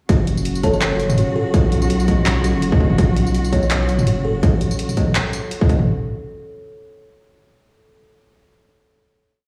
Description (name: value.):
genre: half-time drum and bass.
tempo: 166 BPM.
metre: 4/4.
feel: swing 55% on 16ths, half-time.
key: unclear.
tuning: A4 = 440 Hz.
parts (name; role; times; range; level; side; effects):
dark studio cello section; sustained chords; 0.1-5.8 s; C#3 to F#4; -26 LUFS; equal; sidechain pumping.
buzzing kalimba; arpeggios; 0.1-4.4 s; F#4 to C#5; -28 LUFS; equal; tape echo.
saturated sub bass; bass; 0.1-4.4 s; F#1 to B1; -23 LUFS; equal; none.
drum and bass drum kit; drums; 0.1-5.9 s; handclaps, hi-hat, tambourine, toms; -25 LUFS; equal; overdrive.
electronic kick drum; drums; 0.1-5.8 s; none; -20 LUFS; equal; distortion.
thumb-piano-like synth pluck; melody; 0.6-0.8 s; A4; -29 LUFS; equal; chorus, tape echo.
room: light reverb, digital ambience.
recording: played on a big sound system in a bare room, stone room reverb, small room ambience.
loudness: -18 LUFS.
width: mono.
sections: 0.1-5.9 drop.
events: drop 0.1-5.9.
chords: 0.1 F#5.